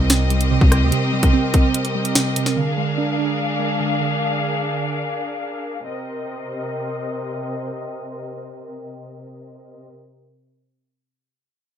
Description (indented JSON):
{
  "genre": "hip hop, drill",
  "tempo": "146 BPM",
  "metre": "4/4",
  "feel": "half-time",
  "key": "C minor",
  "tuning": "A4 = 440 Hz",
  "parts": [
    { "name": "muted felt-like synth keys", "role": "accompaniment", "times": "0.0-5.0 s", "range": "C3 to D4", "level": "-21 LUFS", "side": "right 3 dB", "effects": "chorus, low-pass filter" },
    { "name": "clear symphonic string section", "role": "sustained chords", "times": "0.0-9.9 s", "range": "C3 to F5", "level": "-25 LUFS", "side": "left 2 dB", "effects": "low-pass filter" },
    { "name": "hard-hitting 808-style bass", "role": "bass", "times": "0.0-0.9 s", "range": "C2 to D2", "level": "-18 LUFS", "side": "equal", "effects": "none" },
    { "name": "drill drum kit", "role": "drums", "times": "0.1-2.6 s", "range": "hi-hat, kick drum, rim click, snare drum", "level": "-17 LUFS", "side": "equal", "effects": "none" }
  ],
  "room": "little or no reverb",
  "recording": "none",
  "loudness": "-18 LUFS",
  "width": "side -9 dB against mid",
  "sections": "0.0-5.9 A section; 5.9-9.1 B section",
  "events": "none",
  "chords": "0.0 Cm7; 2.6 Bb7; 5.9 Cm7"
}